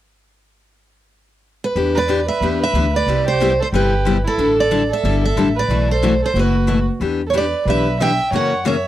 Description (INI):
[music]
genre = acoustic string swing (jazz manouche)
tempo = 183 BPM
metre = 4/4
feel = swing 59% on 8ths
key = E minor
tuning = A4 = 440 Hz
[part]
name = picked steel-string acoustic guitar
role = melody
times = 1.6-8.9 s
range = A4 to G5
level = -20 LUFS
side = right 3 dB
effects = none
[part]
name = picked steel-string acoustic guitar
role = accompaniment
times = 1.8-8.8 s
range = B2 to A4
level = -20 LUFS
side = left 5 dB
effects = none
[part]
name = upright bass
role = bass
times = 1.8-8.8 s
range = F#1 to F#2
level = -20 LUFS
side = equal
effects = none
[part]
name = warm violin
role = second line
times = 1.9-8.9 s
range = E4 to E5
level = -24 LUFS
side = right 5 dB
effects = none
[sound]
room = little or no reverb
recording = dry, close 1970s-style studio recording, faint mains hum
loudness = -15 LUFS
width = side -13 dB against mid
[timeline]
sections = 0.4-1.8 A section; 1.8-8.9 B section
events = none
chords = 0.4 N.C.; 1.8 Em7; 3.1 Cmaj7; 4.4 A7sus4; 5.7 B7sus4; 7.0 Em7; 8.3 F#7